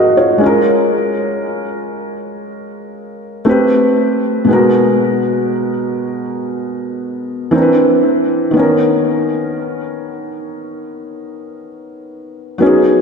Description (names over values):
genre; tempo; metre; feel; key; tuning
R&B; 59 BPM; 4/4; straight; unclear; A4 = 440 Hz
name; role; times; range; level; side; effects
felt-muted upright piano; solo; 0.0-13.0 s; B2 to F#5; -13 LUFS; equal; ping-pong delay
room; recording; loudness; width
wet lush hall reverb, RT60 2.7 s; dreamy mix soaked in reverb; -12 LUFS; side -5 dB against mid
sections
0.0-12.6 A section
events
none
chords
0.4 A#m7; 3.5 Am9; 4.5 G#m9/B; 7.5 Cmaj9; 8.5 Bmaj9